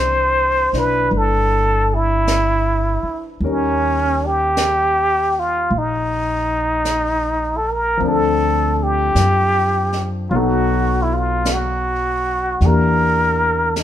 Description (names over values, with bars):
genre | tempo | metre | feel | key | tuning
jazz ballad | 52 BPM | 4/4 | swing 67% on 8ths | unclear | A4 = 440 Hz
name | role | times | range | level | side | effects
trumpet with plunger mute | melody | 0.0-13.8 s | Db4 to C5 | -17 LUFS | equal | none
clear concert grand piano | accompaniment | 0.0-13.8 s | E3 to D5 | -24 LUFS | left 4 dB | none
upright bass | bass | 0.0-13.8 s | G1 to F#2 | -21 LUFS | equal | none
jazz brush drum kit | drums | 0.7-13.8 s | brushed snare drum, hi-hat, snare drum | -28 LUFS | right 1 dB | none
room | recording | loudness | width
light reverb | minimal, uncompressed stereo recording | -15 LUFS | side -11 dB against mid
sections
0.0-13.8 A section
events
none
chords
0.0 Cmaj9; 3.4 Eb7; 8.0 Dm7; 10.3 B7; 12.6 Em7b5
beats
1.11 2.27 | 3.42 4.56 5.71 6.86 | 8.01 9.15 10.30 11.46 | 12.61 13.77